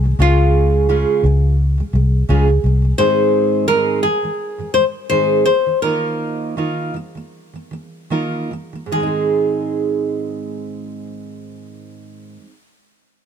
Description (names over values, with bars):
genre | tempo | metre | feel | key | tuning
acoustic pop | 73-86 BPM | 4/4 | swing 55% on 16ths | Ab major | A4 = 440 Hz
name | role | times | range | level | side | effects
flamenco guitar | melody | 0.0-12.1 s | F4 to C5 | -18 LUFS | left 4 dB | none
fingerpicked steel-string acoustic guitar | accompaniment | 0.0-12.6 s | Ab2 to Bb4 | -20 LUFS | right 4 dB | none
vintage muted fingered electric bass | bass | 0.0-2.9 s | C2 to Db2 | -14 LUFS | left 1 dB | none
room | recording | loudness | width
little or no reverb | close, detailed microphones | -15 LUFS | side -8 dB against mid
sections
0.0-8.9 A section; 8.9-12.2 B section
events
slowing down 3.0-8.9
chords
0.2 Db; 3.0 Ab; 5.5 Ebsus2; 8.9 Ab